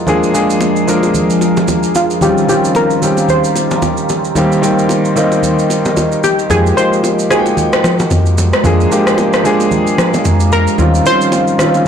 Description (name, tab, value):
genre	amapiano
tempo	112 BPM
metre	4/4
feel	swing 58% on 16ths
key	unclear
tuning	A4 = 440 Hz
part	warm concert grand piano	accompaniment	0.0-11.9 s	Eb3 to G5	-13 LUFS	left 1 dB	none
part	deep dark ambient pad	sustained chords	0.0-11.9 s	Eb3 to Eb6	-20 LUFS	right 1 dB	chorus, built-in reverb, low-pass filter
part	electronic shaker and rim click	drums	0.1-11.9 s	none	-20 LUFS	right 1 dB	none
part	congas and bongos	percussion	0.1-11.9 s	none	-20 LUFS	right 1 dB	none
part	analog pluck	melody	2.0-11.8 s	F4 to C5	-15 LUFS	equal	chorus, low-pass filter, analog delay
part	hollow-body short-scale fingered electric bass	bass	6.5-11.0 s	Eb2 to F3	-13 LUFS	equal	tube saturation
room	moderate plate reverb, RT60 1.6 s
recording	blown-out, overdriven recording, overdrive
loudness	-10 LUFS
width	side -8 dB against mid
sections	0.0-11.9 A section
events	filter sweep 0.0-11.9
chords	0.1 Bb7/F; 2.2 Eb13; 4.4 Cm7; 6.5 Fm11; 8.6 Bb7/F; 10.8 Eb13